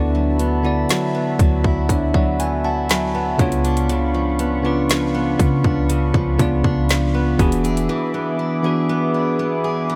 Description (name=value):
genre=contemporary R&B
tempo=60 BPM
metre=4/4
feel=straight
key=unclear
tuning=A4 = 437 Hz
part: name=bell-like tine electric piano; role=accompaniment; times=0.0-10.0 s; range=C#3 to B5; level=-23 LUFS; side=equal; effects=none
part: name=warm analog pad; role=sustained chords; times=0.0-10.0 s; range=D4 to D6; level=-28 LUFS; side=equal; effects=chorus, sidechain pumping
part: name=picked steel-string acoustic guitar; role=arpeggios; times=0.0-10.0 s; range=C#3 to G#4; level=-27 LUFS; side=equal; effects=tape echo
part: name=clean 808-style bass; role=bass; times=0.0-7.9 s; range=E1 to C#3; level=-24 LUFS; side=equal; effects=none
part: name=trap drum kit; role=drums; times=0.4-7.9 s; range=hi-hat, kick drum, snare drum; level=-23 LUFS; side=equal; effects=none
part: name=reverse cymbal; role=sound effects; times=9.9-10.0 s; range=none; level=barely audible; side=none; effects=none
room=light reverb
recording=none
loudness=-19 LUFS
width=mono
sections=0.0-10.0 A section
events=break 7.9-10.0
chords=0.0 D69; 3.4 C#7b9; 7.4 E7